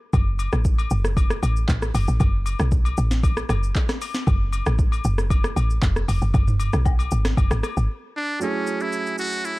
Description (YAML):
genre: amapiano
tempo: 116 BPM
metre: 4/4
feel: straight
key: F# minor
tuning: A4 = 440 Hz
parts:
  - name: woody log drum bass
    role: bass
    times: 0.1-7.9 s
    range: E#1 to B1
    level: -21 LUFS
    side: equal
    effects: none
  - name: smooth R&B drum kit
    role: drums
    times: 0.1-9.6 s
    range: handclaps, hi-hat, kick drum, rim click, shaker, snare drum, toms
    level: -22 LUFS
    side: equal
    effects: overdrive
  - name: agogo bells and woodblock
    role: percussion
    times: 0.1-7.8 s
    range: none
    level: -33 LUFS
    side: left 9 dB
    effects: none
  - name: trumpet with metal mute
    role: melody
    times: 8.2-9.6 s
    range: C#4 to F#4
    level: -25 LUFS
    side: equal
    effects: digital delay
  - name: clear grand piano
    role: accompaniment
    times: 8.4-9.6 s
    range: F#3 to G#4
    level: -26 LUFS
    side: right 5 dB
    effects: none
room: little or no reverb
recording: dark, warm production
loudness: -19 LUFS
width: side -20 dB against mid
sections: 0.0-8.4 A section; 8.4-9.6 B section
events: drop 0.0-8.4; break 7.9-8.4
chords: 0.1 F#m; 5.8 N.C.; 6.3 F#sus24; 8.4 F#m7